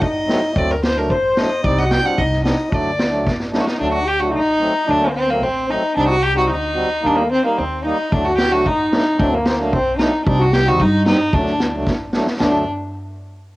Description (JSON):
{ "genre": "klezmer", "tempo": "112 BPM", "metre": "2/4", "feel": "straight", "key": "D phrygian dominant", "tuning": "A4 = 440 Hz", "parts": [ { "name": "rich violin", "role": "melody", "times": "0.0-12.6 s", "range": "Bb3 to G5", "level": "-20 LUFS", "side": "equal", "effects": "cassette tape" }, { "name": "clear trombone", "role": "second line", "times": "0.0-12.6 s", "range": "A3 to D5", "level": "-22 LUFS", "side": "left 1 dB", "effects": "cassette tape" }, { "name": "mellow accordion", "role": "accompaniment", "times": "0.0-12.6 s", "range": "F#3 to F#4", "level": "-22 LUFS", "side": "right 1 dB", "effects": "cassette tape" }, { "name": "upright bass", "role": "bass", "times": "0.0-12.6 s", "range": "A1 to G2", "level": "-23 LUFS", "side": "equal", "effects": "none" }, { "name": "street-band drum kit", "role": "drums", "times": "0.0-3.8, 8.1-12.5 s", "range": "kick drum, snare drum, toms", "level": "-21 LUFS", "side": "equal", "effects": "cassette tape" } ], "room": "light reverb", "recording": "home recording on cassette", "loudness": "-15 LUFS", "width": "side -18 dB against mid", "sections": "0.0-3.8 A section; 3.8-12.4 A section; 12.4-13.5 B section", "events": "drum fill 3.3-3.8, 11.9-12.4", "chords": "0.0 D; 1.6 Cm; 2.7 D; 6.0 Cm; 7.0 Eb; 8.1 D; 10.3 Cm; 11.3 D", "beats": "0.00 | 0.55 1.09 | 1.63 2.18 | 2.72 3.26 | 3.80 4.34 | 4.88 5.42 | 5.96 6.50 | 7.04 7.57 | 8.11 8.65 | 9.18 9.72 | 10.26 10.79 | 11.33 11.86 | 12.40" }